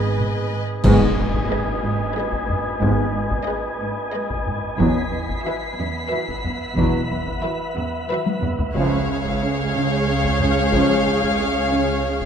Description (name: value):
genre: cinematic, suspense film score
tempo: 91 BPM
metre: 3/4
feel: straight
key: unclear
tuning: A4 = 437 Hz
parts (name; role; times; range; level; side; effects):
- warm chamber violin section; melody; 0.0-12.3 s; D#5 to E#5; -28 LUFS; left 4 dB; none
- warm chamber violin section; second line; 0.0-12.3 s; B4 to C#5; -27 LUFS; equal; none
- warm studio viola section; accompaniment; 0.0-12.3 s; F#4 to G#4; -30 LUFS; right 1 dB; none
- clear trombone section; sustained chords; 0.0-11.0 s; G#2 to G#3; -27 LUFS; right 3 dB; none
- mellow French horn section; sustained chords; 0.0-11.0 s; G#3 to E#4; -28 LUFS; left 6 dB; none
- wind-like tuned noise texture; sustained chords; 0.0-12.3 s; G#4 to G#5; -28 LUFS; equal; built-in reverb
- warm symphonic cello section; riff; 0.0-12.3 s; E2 to C#4; -27 LUFS; right 1 dB; none
- dark chamber double bass section; bass; 0.0-12.3 s; E1 to C#2; -27 LUFS; right 3 dB; none
- dark studio cello section; bass; 0.0-12.3 s; C#2 to G#2; -25 LUFS; right 2 dB; none
- taiko ensemble; drums; 0.2-12.3 s; none; -27 LUFS; left 1 dB; none
- clash cymbals and concert bass drum; percussion; 0.8-2.1 s; none; -28 LUFS; left 1 dB; none
- impact; sound effects; 0.8-2.8 s; none; -27 LUFS; left 1 dB; none
- warm studio violin section; texture; 4.8-12.3 s; C#6 to B#6; -34 LUFS; left 2 dB; none
room: moderate scoring stage reverb, RT60 1.6 s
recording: dark, warm production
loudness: -19 LUFS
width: side -8 dB against mid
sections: 0.8-12.3 A section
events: band accent 0.8-1.5; impact 0.8-2.8; drum fill 8.3-8.7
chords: 0.0 G#m; 4.8 Esus2; 8.7 C#